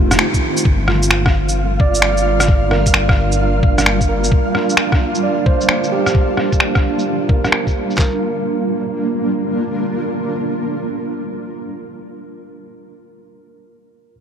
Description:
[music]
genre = future garage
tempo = 131 BPM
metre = 4/4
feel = swing 65% on 16ths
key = G minor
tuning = A4 = 440 Hz
[part]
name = overdriven tine electric piano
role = accompaniment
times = 0.0-14.2 s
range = Eb4 to D5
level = -23 LUFS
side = right 4 dB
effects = sidechain pumping, low-pass filter, ping-pong delay
[part]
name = granular cloud pad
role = sustained chords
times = 0.0-12.0 s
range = Eb3 to A5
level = -20 LUFS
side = right 1 dB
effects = built-in reverb, sidechain pumping
[part]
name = dark detuned saw bass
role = bass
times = 0.0-4.3 s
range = F1 to G1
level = -18 LUFS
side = equal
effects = sidechain pumping
[part]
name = electronic rim click, shaker and finger snaps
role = drums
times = 0.1-8.0 s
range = none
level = -18 LUFS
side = equal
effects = low-pass filter on snare, low-pass filter on perc
[part]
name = lo-fi sampler-style drum kit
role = drums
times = 0.3-8.1 s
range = handclaps, kick drum, snare drum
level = -15 LUFS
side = equal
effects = none
[part]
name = flickering grainy texture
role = texture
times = 1.0-8.0 s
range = F5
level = -26 LUFS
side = equal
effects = built-in reverb
[sound]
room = light reverb, digital ambience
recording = none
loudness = -14 LUFS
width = side -8 dB against mid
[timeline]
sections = 0.6-8.0 A section; 8.0-11.6 B section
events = band accent 0.2; filter sweep on tine electric piano 0.6-8.0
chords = 0.0 F7; 0.6 Gm7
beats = 0.19 | 0.65 1.11 1.56 2.02 | 2.48 2.94 3.40 3.85 | 4.31 4.77 5.23 5.69 | 6.14 6.60 7.06 7.52 | 7.98 8.43 8.89 9.35 | 9.81 10.27 10.72 11.18

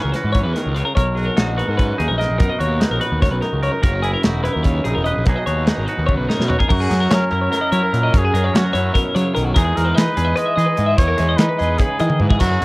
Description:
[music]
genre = math rock and midwest emo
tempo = 293 BPM (eighths)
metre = 7/8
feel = straight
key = B major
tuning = A4 = 440 Hz
[part]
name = twangy electric guitar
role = accompaniment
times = 0.0-12.6 s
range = F#2 to B4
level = -24 LUFS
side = right 2 dB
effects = none
[part]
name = twelve-string electric guitar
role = arpeggios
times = 0.0-12.6 s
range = F#4 to E5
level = -22 LUFS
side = left 2 dB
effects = analog delay
[part]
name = fuzz picked electric bass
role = bass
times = 0.0-12.6 s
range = E1 to F#3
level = -20 LUFS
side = equal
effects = overdrive, transformer saturation
[part]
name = modern studio drum kit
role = drums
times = 0.1-12.6 s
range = crash cymbal, hi-hat, kick drum, snare drum, splash cymbal, toms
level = -18 LUFS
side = equal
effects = none
[part]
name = clear trumpet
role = melody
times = 6.7-12.6 s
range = F#4 to D#5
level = -22 LUFS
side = equal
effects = none
[sound]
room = light reverb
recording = worn, warbling old tape, cassette tape, warbly pitch drift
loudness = -15 LUFS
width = side -22 dB against mid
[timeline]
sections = 0.0-6.7 A section; 6.7-12.6 B section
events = drum fill 6.1-6.7, 12.1-12.4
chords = 0.0 E69; 1.0 Bmaj9; 3.8 F#13; 5.3 B69; 6.7 F#7; 9.6 Emaj7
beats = 0.14 0.35 0.55 0.76 | 0.96 1.17 1.37 1.58 1.78 1.99 2.19 | 2.40 2.60 2.81 3.01 3.22 3.42 3.63 | 3.83 4.04 4.24 4.45 4.65 4.86 5.06 | 5.26 5.47 5.67 5.88 6.08 6.29 6.49 | 6.70 6.90 7.11 7.31 7.51 7.72 7.92 | 8.13 8.33 8.54 8.74 8.94 9.15 9.35 | 9.55 9.76 9.96 10.17 10.37 10.57 10.78 | 10.98 11.19 11.39 11.59 11.80 12.00 12.21 | 12.41 12.61

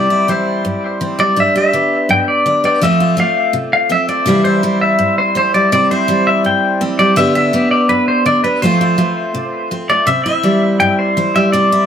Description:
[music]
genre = country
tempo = 165 BPM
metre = 4/4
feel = straight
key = C major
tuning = A4 = 440 Hz
[part]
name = pedal steel guitar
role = melody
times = 0.0-11.9 s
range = B4 to G5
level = -14 LUFS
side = left 1 dB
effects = tape echo
[part]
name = picked steel-string acoustic guitar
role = accompaniment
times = 0.0-11.9 s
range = F2 to G4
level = -15 LUFS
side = equal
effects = none
[sound]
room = moderate studio reverb, RT60 0.8 s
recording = close, detailed microphones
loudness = -11 LUFS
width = side -8 dB against mid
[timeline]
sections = 0.0-11.9 A section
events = none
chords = 0.0 C; 1.4 G; 2.8 F; 4.3 C; 7.2 G; 8.6 F; 10.1 C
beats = 0.28 0.64 1.01 | 1.37 1.73 2.09 2.46 | 2.82 3.18 3.54 3.90 | 4.27 4.63 4.99 5.36 | 5.72 6.08 6.44 6.81 | 7.17 7.53 7.89 8.26 | 8.62 8.98 9.35 9.71 | 10.07 10.44 10.80 11.16 | 11.53

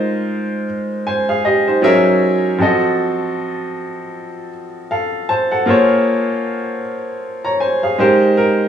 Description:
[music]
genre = R&B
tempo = 78 BPM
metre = 4/4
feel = swing 58% on 16ths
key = unclear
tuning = A4 = 440 Hz
[part]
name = clear baby grand piano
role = solo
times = 0.0-8.7 s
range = F3 to Bb5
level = -14 LUFS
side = equal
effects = none
[sound]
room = wet studio ambience, RT60 0.5 s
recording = band playing live in one room, small room ambience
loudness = -14 LUFS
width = side -8 dB against mid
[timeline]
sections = 0.0-8.7 A section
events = none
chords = 0.0 Ab6; 1.8 Gb9; 2.6 F7b9; 5.7 Bbm9; 8.0 Abmaj9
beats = 0.28 1.05 1.82 | 2.59 3.36 4.13 4.90 | 5.67 6.43 7.20 7.97

